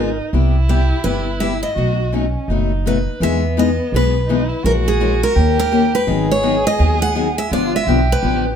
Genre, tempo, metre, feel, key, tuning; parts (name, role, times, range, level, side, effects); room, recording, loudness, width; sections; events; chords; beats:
acoustic string swing (jazz manouche); 167 BPM; 4/4; swing 61% on 8ths; A4 = 440 Hz
picked steel-string acoustic guitar; melody; 0.0-8.4 s; G4 to F#5; -20 LUFS; right 1 dB; plate reverb
warm violin; second line; 0.0-8.6 s; B3 to G#4; -23 LUFS; right 2 dB
picked steel-string acoustic guitar; accompaniment; 0.0-8.4 s; B2 to A#4; -20 LUFS; left 6 dB
upright bass; bass; 0.0-8.5 s; F#1 to E2; -18 LUFS; right 1 dB
moderate club reverb, RT60 0.5 s; heard from further back in the room; -14 LUFS; side -8 dB against mid
0.0-3.2 A section; 3.2-8.6 B section
0.3 Cmaj7; 1.8 B7; 3.2 Emaj7; 4.6 A#m7b5; 5.4 D#7; 6.1 G#m7; 7.5 G13
| 0.34 0.69 1.05 1.41 | 1.77 2.13 2.49 2.85 | 3.21 3.57 3.92 4.28 | 4.64 5.00 5.36 5.72 | 6.08 6.44 6.79 7.15 | 7.51 7.87 8.23